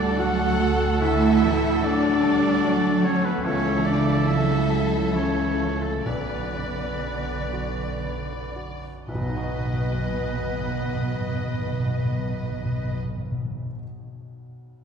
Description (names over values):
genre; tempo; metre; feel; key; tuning
cinematic, emotional film score for orchestra; 56-75 BPM; 3/4; rubato; B minor; A4 = 439 Hz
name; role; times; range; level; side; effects
warm symphonic violin section; melody; 0.0-13.0 s; A4 to D#5; -35 LUFS; left 4 dB; none
clear clarinet; second line; 0.0-13.0 s; A4 to B4; -35 LUFS; left 2 dB; none
silver concert flute; second line; 0.0-13.0 s; D5 to F#5; -37 LUFS; equal; none
warm oboe; second line; 0.0-13.0 s; A4 to F#5; -32 LUFS; right 2 dB; none
warm symphonic violin section; second line; 0.0-13.0 s; A4 to F#5; -36 LUFS; left 2 dB; none
clear baby grand piano; accompaniment; 0.0-14.8 s; B1 to D#5; -32 LUFS; equal; none
warm symphonic viola section; accompaniment; 0.0-13.0 s; A3 to D5; -35 LUFS; right 2 dB; none
mellow French horn section; sustained chords; 0.0-13.0 s; A3 to F#4; -28 LUFS; left 3 dB; none
rich symphonic double bass section; bass; 0.0-13.0 s; B1 to D2; -28 LUFS; right 4 dB; none
warm symphonic cello section; bass; 0.0-13.0 s; B2 to A3; -29 LUFS; right 4 dB; none
timpani; percussion; 6.1-13.6 s; B2; -29 LUFS; left 1 dB; none
room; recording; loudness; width
wet scoring stage reverb, RT60 1.8 s; heard from further back in the room; -21 LUFS; side -6 dB against mid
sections
0.0-9.1 A section; 9.1-12.2 B section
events
slowing down 2.2-9.1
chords
0.0 D; 3.5 A/C#; 6.1 Bm; 9.1 B